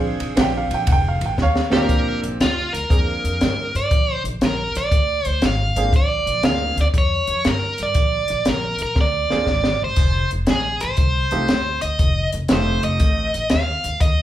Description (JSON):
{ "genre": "electric blues shuffle", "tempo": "119 BPM", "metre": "4/4", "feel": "swing 67% on 8ths", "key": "Bb mixolydian", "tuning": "A4 = 440 Hz", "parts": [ { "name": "clear upright piano", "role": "accompaniment", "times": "0.0-13.3 s", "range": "Bb2 to G5", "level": "-23 LUFS", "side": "right 2 dB", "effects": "none" }, { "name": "upright bass", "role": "bass", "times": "0.0-14.2 s", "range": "F1 to G2", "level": "-24 LUFS", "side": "equal", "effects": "none" }, { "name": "compact cocktail drum kit", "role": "drums", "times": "0.2-14.2 s", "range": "hi-hat, kick drum, ride cymbal, snare drum, splash cymbal", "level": "-20 LUFS", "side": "equal", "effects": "none" }, { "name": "overdriven electric guitar", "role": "melody", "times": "1.7-14.2 s", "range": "F4 to F5", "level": "-22 LUFS", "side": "right 1 dB", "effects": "none" } ], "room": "light reverb", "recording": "band playing live in one room", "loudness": "-17 LUFS", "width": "side -12 dB against mid", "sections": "0.0-1.9 A section; 1.9-14.2 B section", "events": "drum fill 1.4-1.9, 9.0-10.0", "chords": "0.0 Bb7; 0.9 F7; 1.9 Bb7; 10.0 F7" }